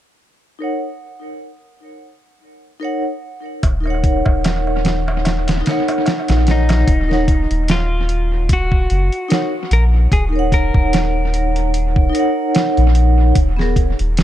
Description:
trip hop; 74 BPM; 4/4; swing 55% on 16ths; Eb minor; A4 = 438 Hz
vibraphone with medium hard mallets; accompaniment; 0.6-13.7 s; Cb4 to Gb5; -20 LUFS; equal; tremolo, vintage 12-bit sampler grit, low-pass filter, tape echo
soft dub sub bass; bass; 3.6-14.2 s; Eb1 to Bb1; -16 LUFS; equal
dusty soul sampler-style drum kit; drums; 3.6-14.2 s; hi-hat, kick drum, snare drum; -18 LUFS; equal; dub echo
darbuka; percussion; 3.6-6.8 s; -29 LUFS; right 2 dB; dub echo
clean electric guitar; melody; 6.5-11.7 s; Eb4 to Bb4; -24 LUFS; left 2 dB; dub echo
light reverb; echo-heavy mix; -14 LUFS; side -12 dB against mid
0.4-6.9 A section; 6.9-14.2 B section
0.4 Ebm7; 13.4 Abm/Eb (rootless)
| 0.39 1.20 2.01 2.82 | 3.63 4.44 5.25 6.06 | 6.87 7.68 8.49 9.30 | 10.12 10.93 11.74 12.55 | 13.36 14.17

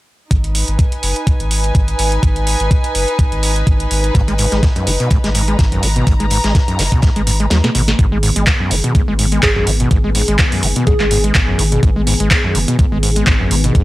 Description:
acid house; 125 BPM; 4/4; swing 55% on 16ths; G# minor; A4 = 440 Hz
saturated sub bass; bass; 0.3-13.8 s; F#1 to D#2; -17 LUFS; equal; tube saturation, sidechain pumping
booming analog drum machine; drums; 0.3-13.8 s; handclaps, hi-hat, snare drum; -19 LUFS; right 1 dB
electronic kick drum; drums; 0.3-13.8 s; -14 LUFS; equal
warm studio string section; texture; 0.3-8.0 s; D#4 to A#5; -22 LUFS; equal; sidechain pumping
overdriven acid bass; riff; 4.1-13.8 s; F#2 to G#3; -18 LUFS; equal; distortion, wide subtle chorus, tape echo
warm soul drum kit; drums; 4.2-7.9 s; hi-hat, snare drum; -27 LUFS; left 1 dB; sidechain pumping on hats, high-pass filter on hats, high-pass filter on snare, high-pass filter on room
warm analog pad; sustained chords; 8.0-13.8 s; G#2 to G#4; -22 LUFS; left 1 dB; chorus, sidechain pumping
plucky unison lead; melody; 9.4-11.2 s; G#4; -23 LUFS; equal; analog delay
little or no reverb; dry, gritty hardware recording; -12 LUFS; side -17 dB against mid
0.3-8.0 A section; 8.0-13.8 B section
kick drops out 7.5-8.0; drum fill 7.5-8.0
0.3 G#m
| 0.31 0.79 1.27 1.75 | 2.23 2.71 3.19 3.67 | 4.15 4.63 5.11 5.59 | 6.07 6.55 7.03 7.51 | 7.99 8.47 8.95 9.43 | 9.91 10.39 10.87 11.35 | 11.83 12.31 12.79 13.27 | 13.75

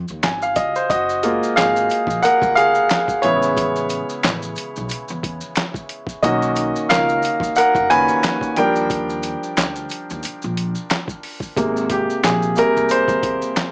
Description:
R&B, neo-soul; 90 BPM; 4/4; swing 58% on 16ths; A4 = 440 Hz
upright bass; bass; 0.0-13.4 s; Gb1 to E2; -28 LUFS; equal
maracas and finger snaps; percussion; 0.1-13.7 s; -30 LUFS; left 1 dB
clear baby grand piano; accompaniment; 0.2-13.7 s; A#2 to Ab5; -17 LUFS; equal
boom bap sampler-style drum kit; drums; 0.2-13.7 s; handclaps, hi-hat, kick drum, snare drum; -22 LUFS; equal
moderate studio reverb, RT60 0.5 s; small speaker sound; -16 LUFS; side -34 dB against mid
0.9-11.6 A section; 11.6-13.7 B section
grand piano solo 0.9-11.6, 11.6-13.7
0.0 Ab5; 0.9 Gbmaj9; 3.2 Amaj9; 6.2 Bmaj9; 8.6 Ebmaj9; 11.6 Abmaj9
0.23 | 0.90 1.56 2.23 2.90 | 3.56 4.23 4.90 5.57 | 6.23 6.90 7.57 8.23 | 8.90 9.56 10.23 10.90 | 11.56 12.23 12.90 13.56

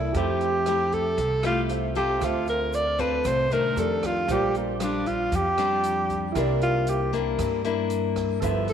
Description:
bossa nova; 116 BPM; 4/4; straight; F major; A4 = 439 Hz
breathy alto saxophone; melody; 0.0-8.7 s; Bb3 to D5; -25 LUFS; right 1 dB; slapback echo
nylon-string guitar; accompaniment; 0.0-8.7 s; G2 to A4; -28 LUFS; left 9 dB
warm grand piano; accompaniment; 0.0-8.7 s; E4 to E5; -32 LUFS; right 12 dB
upright bass; bass; 0.0-8.7 s; G1 to G2; -30 LUFS; right 1 dB
open jazz drum kit; drums; 0.1-8.7 s; hi-hat, kick drum, rim click; -37 LUFS; right 3 dB
egg shaker; percussion; 2.2-8.7 s; -52 LUFS; left 11 dB
moderate echo chamber reverb, RT60 2.2 s; 1960s-style stereo with parts hard left and right; -22 LUFS; side -8 dB against mid
0.0-8.7 A section
alto saxophone solo 0.0-8.7
0.1 Fmaj9; 2.2 Dm7; 3.8 F13; 4.3 Bb6; 6.4 C9
| 0.15 0.67 1.18 1.70 | 2.22 2.73 3.25 3.77 | 4.29 4.80 5.32 5.83 | 6.35 6.87 7.38 7.90 | 8.42

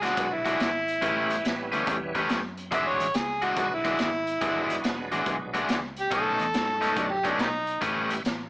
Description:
electric blues shuffle; 141 BPM; 4/4; swing 66% on 8ths; E mixolydian; A4 = 438 Hz
overdriven harmonica; melody; 0.0-7.8 s; G3 to E5; -27 LUFS; equal
crunchy overdriven guitar; riff; 0.0-8.1 s; B2 to B4; -27 LUFS; left 1 dB
vintage muted fingered electric bass; bass; 0.0-8.5 s; E1 to G#2; -41 LUFS; equal
raw garage drum kit; drums; 0.0-8.4 s; hi-hat, kick drum, snare drum; -32 LUFS; equal
bright tonewheel organ; accompaniment; 0.2-8.2 s; E3 to A4; -34 LUFS; right 2 dB; slow rotary speaker, chorus vibrato
moderate studio ambience, RT60 0.5 s; small speaker sound; -24 LUFS; side -24 dB against mid
0.0-8.5 A section
0.0 E9; 1.0 A9; 2.7 E9; 6.1 B9; 7.8 A9
0.17 0.60 | 1.02 1.45 1.87 2.30 | 2.72 3.15 3.57 4.00 | 4.42 4.84 5.27 5.69 | 6.12 6.54 6.97 7.39 | 7.82 8.24

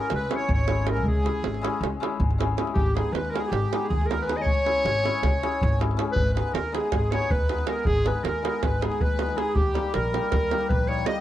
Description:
balkan folk, Balkan wedding band; 318 BPM (eighths); 9/8; straight; A4 = 440 Hz
clear clarinet; melody; 0.0-11.2 s; G4 to D#5; -28 LUFS; equal
accordion; second line; 0.0-11.2 s; G4 to D#5; -32 LUFS; right 4 dB; light tremolo tuning
hammered dulcimer; accompaniment; 0.0-11.2 s; G3 to G#4; -30 LUFS; left 8 dB
upright bass; bass; 0.1-11.0 s; G#1 to D#2; -28 LUFS; equal
davul; percussion; 0.1-11.2 s; -27 LUFS; right 2 dB
studio reverb; dry, close 1970s-style studio recording; -22 LUFS; side -12 dB against mid
0.0-6.2 A section; 6.2-11.2 B section
0.0 C#m; 2.8 G#m; 4.5 C#m; 6.2 G#m; 9.6 D#
0.10 0.29 0.48 0.67 0.86 | 1.05 1.24 1.43 1.62 1.80 2.00 2.18 2.37 2.56 | 2.75 2.94 3.13 3.32 3.51 3.70 3.89 4.08 4.27 | 4.46 4.65 4.83 5.02 5.21 5.40 5.59 5.78 5.97 | 6.16 6.35 6.54 6.72 6.91 7.10 7.29 7.48 7.67 | 7.86 8.04 8.23 8.42 8.61 8.80 8.99 9.18 9.37 | 9.55 9.74 9.93 10.12 10.31 10.50 10.68 10.87 11.06

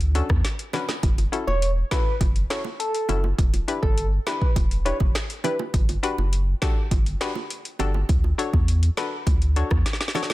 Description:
dancehall; 102 BPM; 4/4; straight; A4 = 439 Hz
warm sub bass; bass; 0.0-9.8 s; E1 to E2; -22 LUFS; equal
afro-pop drum kit; drums; 0.0-10.3 s; finger snaps, hi-hat, kick drum, rim click, snare drum; -23 LUFS; equal; vintage 12-bit sampler grit
hollow square pluck; accompaniment; 0.1-10.3 s; C#4 to C#5; -29 LUFS; left 4 dB; chorus
bongos; percussion; 0.3-10.3 s; -34 LUFS; right 8 dB
soft struck synth lead; melody; 1.5-5.6 s; A4 to C#5; -28 LUFS; equal; chorus
little or no reverb; dense, heavily limited modern master; -20 LUFS; side -17 dB against mid
0.0-10.3 A section
drum fill 0.4-1.0, 9.9-10.3
0.0 Dmaj7; 1.0 F#m7; 3.4 Em7; 5.7 Gmaj7; 8.1 Dmaj7
0.45 | 1.03 1.62 2.21 2.80 | 3.39 3.97 4.56 5.15 | 5.74 6.33 6.92 7.50 | 8.09 8.68 9.27 9.86

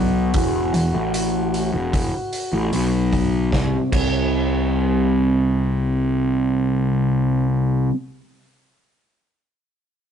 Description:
psychedelic rock; 76 BPM; 4/4; straight; C lydian; A4 = 440 Hz
combo organ; melody; 0.0-7.5 s; C4 to F#4; -27 LUFS; right 2 dB; low-pass filter
fuzz guitar; riff; 0.0-7.9 s; E2 to C4; -21 LUFS; equal; distortion, phaser, low-pass filter
fuzz picked electric bass; bass; 0.0-7.9 s; E1 to C2; -23 LUFS; equal; overdrive
vintage drum kit; drums; 0.3-4.1 s; crash cymbal, hi-hat, kick drum, snare drum; -26 LUFS; equal
light reverb; rough rehearsal-room recording, tube saturation, nothing above 10.8 kHz; -18 LUFS; side -8 dB against mid
0.0-3.5 A section; 3.5-6.7 B section
filter sweep 0.0-3.5
0.0 Esus2; 3.5 C5
| 0.35 1.14 1.94 2.73 | 3.53 4.32 5.12 5.91

